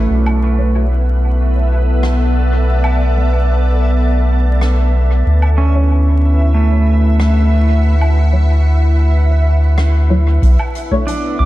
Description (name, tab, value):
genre	ambient dub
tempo	93 BPM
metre	4/4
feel	straight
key	B minor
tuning	A4 = 443 Hz
part	soft additive organ-like pad	sustained chords	0.0-11.5 s	B3 to F#5	-22 LUFS	equal	ensemble chorus, built-in reverb
part	pedal steel guitar	arpeggios	0.0-0.8, 5.6-11.5 s	A3 to D6	-21 LUFS	right 2 dB	dub echo
part	soft dub sub bass	bass	0.0-11.5 s	B1 to D2	-11 LUFS	equal	none
part	backwards swelling texture	texture	1.0-10.4 s	E5	-28 LUFS	right 2 dB	built-in reverb
part	soft-mallet drum kit	drums	0.3-11.2 s	hi-hat, rim click, woodblock	-28 LUFS	equal	dub echo
part	filtered dub chord stab	stabs	0.6-11.0 s	F#3 to C#5	-25 LUFS	left 2 dB	phaser, ensemble chorus, dub echo
part	electronic kick drum	drums	10.4-11.0 s	none	-17 LUFS	equal	none
room	studio reverb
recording	dark, warm production, vinyl crackle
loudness	-11 LUFS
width	side -16 dB against mid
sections	0.1-10.4 A section; 10.4-11.5 B section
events	none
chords	0.1 Bm7; 5.3 Dmaj9; 10.4 Bm7